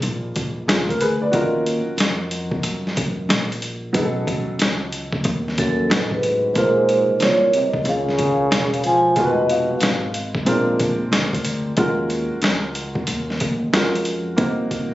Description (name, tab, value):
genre	hip hop, jazz-hop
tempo	92 BPM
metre	4/4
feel	swing 65% on 16ths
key	Bb minor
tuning	A4 = 441 Hz
part	warm upright piano	accompaniment	0.0-14.9 s	F#3 to D5	-24 LUFS	right 1 dB	none
part	upright bass	bass	0.0-14.9 s	E1 to Gb2	-26 LUFS	equal	none
part	trip hop sampler-style drum kit	drums	0.0-14.9 s	hi-hat, kick drum, snare drum	-22 LUFS	equal	none
part	vibraphone with soft mallets	melody	5.6-10.1 s	A4 to Ab5	-19 LUFS	right 1 dB	none
part	breathy trombone	second line	5.6-10.1 s	F#2 to F3	-22 LUFS	left 1 dB	none
room	light reverb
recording	recorded on a phone in the room, studio reverb, nothing above 7.8 kHz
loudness	-18 LUFS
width	side -15 dB against mid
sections	0.0-14.9 A section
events	none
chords	0.0 Bb7b9; 1.3 Ebm9; 3.9 B9; 6.6 Bbm9; 9.2 Fm7b5; 10.5 Bb7; 11.8 Ebm11; 14.4 Cm7b5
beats	0.04 0.69 | 1.34 1.99 2.64 3.29 | 3.95 4.60 5.25 5.90 | 6.56 7.21 7.86 8.51 | 9.16 9.82 10.47 11.12 | 11.77 12.43 13.08 13.73 | 14.38